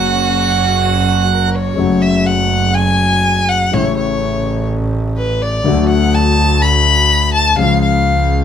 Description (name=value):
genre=tango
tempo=124 BPM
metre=4/4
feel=rubato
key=F# minor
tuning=A4 = 439 Hz
part: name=bandoneon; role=melody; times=0.0-1.5 s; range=F#5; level=-15 LUFS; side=right 10 dB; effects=none
part: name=warm violin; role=second line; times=0.0-8.4 s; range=F#4 to B5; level=-16 LUFS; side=left 3 dB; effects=none
part: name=dark concert grand piano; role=accompaniment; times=0.0-8.4 s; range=A1 to F#4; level=-17 LUFS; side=left 5 dB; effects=none
part: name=rich studio string section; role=stabs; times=0.0-1.7 s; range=A#3 to F#4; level=-26 LUFS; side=left 2 dB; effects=none
part: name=clear double bass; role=bass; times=0.0-8.4 s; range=F#1 to D2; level=-16 LUFS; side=right 2 dB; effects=none
room=moderate studio reverb, RT60 0.5 s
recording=minimal, uncompressed stereo recording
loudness=-11 LUFS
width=side -8 dB against mid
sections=0.0-1.8 A section; 1.8-8.4 B section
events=violin solo 1.8-8.4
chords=0.0 F#; 1.8 F#m; 3.7 A; 5.7 D; 7.6 C#